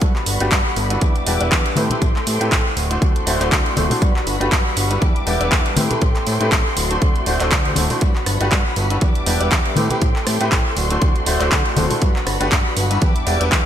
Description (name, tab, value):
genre	filtered disco house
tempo	120 BPM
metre	4/4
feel	swing 56% on 16ths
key	A dorian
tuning	A4 = 439 Hz
part	muted studio string section	sustained chords	0.0-13.7 s	G3 to D6	-26 LUFS	left 1 dB	sidechain pumping, low-pass filter
part	direct-recorded clean electric guitar	riff	0.0-13.7 s	E3 to G4	-27 LUFS	equal	ensemble chorus, sidechain pumping, low-pass filter
part	fat analog bass	bass	0.0-13.6 s	D1 to A2	-22 LUFS	equal	sidechain pumping, low-pass filter
part	electronic kick drum	drums	0.0-13.6 s	none	-18 LUFS	equal	overdrive
part	house drum kit	drums	0.0-13.6 s	handclaps, hi-hat, rim click	-22 LUFS	right 1 dB	overdrive, sidechain pumping on hats
part	tambourine and congas	percussion	0.0-13.6 s	none	-26 LUFS	left 2 dB	sidechain pumping on perc, low-pass filter on perc
part	bright grand piano	accompaniment	0.4-13.7 s	G3 to F#5	-24 LUFS	equal	phaser, sidechain pumping, low-pass filter
room	light reverb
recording	bright 1980s-style digital production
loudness	-15 LUFS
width	side -10 dB against mid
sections	0.0-13.7 A section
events	none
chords	0.0 Gmaj7; 1.0 Em7; 1.8 Am7; 2.8 D7; 4.0 Gmaj7; 5.0 Em7; 5.8 Am7; 6.8 D7; 8.0 Gmaj7; 9.0 Em7; 9.8 Am7; 10.8 D7; 12.0 Gmaj7; 13.0 Em7